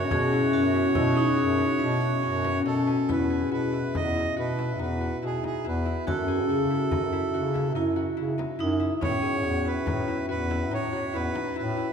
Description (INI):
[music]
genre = contemporary instrumental, chamber music in an uneven meter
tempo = 142 BPM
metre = 7/4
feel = straight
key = E major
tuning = A4 = 441 Hz
[part]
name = accordion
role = melody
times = 0.0-11.9 s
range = G#4 to D#5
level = -30 LUFS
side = right 4 dB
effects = none
[part]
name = vibraphone with medium hard mallets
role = second line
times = 0.0-11.9 s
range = C#4 to G#4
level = -30 LUFS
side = right 4 dB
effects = none
[part]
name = warm woodwind section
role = sustained chords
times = 0.0-3.1 s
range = C#3 to F#4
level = -37 LUFS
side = left 1 dB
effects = none
[part]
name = concert harp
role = arpeggios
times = 0.0-11.9 s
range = B3 to G#4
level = -29 LUFS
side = left 5 dB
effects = none
[part]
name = warm bass clarinet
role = bass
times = 0.0-11.9 s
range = E2 to C#3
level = -29 LUFS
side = left 1 dB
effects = none
[part]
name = frame drum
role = percussion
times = 0.1-11.6 s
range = none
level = -36 LUFS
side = left 1 dB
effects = none
[sound]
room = wet concert hall reverb, RT60 2.5 s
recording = minimal, uncompressed stereo recording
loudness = -24 LUFS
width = side -6 dB against mid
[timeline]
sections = 0.0-3.1 A section; 3.1-11.9 B section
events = none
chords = 0.1 Bsus2; 3.1 Emaj7; 6.1 F#m7; 9.0 Aadd9